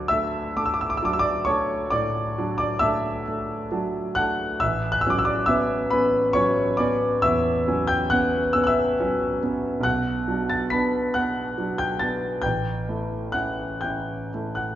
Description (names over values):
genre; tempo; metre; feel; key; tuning
classical, romantic nocturne for solo piano; 45 BPM (dotted quarters); 12/8; rubato; D major; A4 = 441 Hz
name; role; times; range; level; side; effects
warm concert grand piano; solo; 0.0-14.8 s; A1 to B6; -21 LUFS; equal; none
room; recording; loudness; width
wet recital hall reverb, RT60 1.8 s; recorded in a church or concert hall, nothing above 7.5 kHz, faint mains hum; -21 LUFS; side -12 dB against mid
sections
0.0-14.8 A section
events
none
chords
0.0 D; 4.6 A13; 9.8 Bm; 12.4 A7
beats
0.57 1.93 3.26 | 4.60 5.92 7.23 8.54 | 9.85 11.15 12.44 13.83